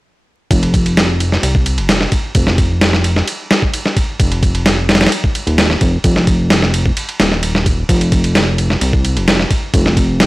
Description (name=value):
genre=breakbeat, breaks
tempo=130 BPM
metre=4/4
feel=straight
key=unclear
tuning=A4 = 439 Hz
part: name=fat analog bass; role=bass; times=0.5-10.3 s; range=Eb1 to C2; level=-15 LUFS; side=equal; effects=tube saturation
part: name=dusty soul sampler-style drum kit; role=drums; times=0.5-10.3 s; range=kick drum, ride cymbal, snare drum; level=-13 LUFS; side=equal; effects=none
room=light reverb, digital ambience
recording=dry, gritty hardware recording, vinyl crackle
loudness=-11 LUFS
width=side -19 dB against mid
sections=0.5-10.3 A section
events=none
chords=none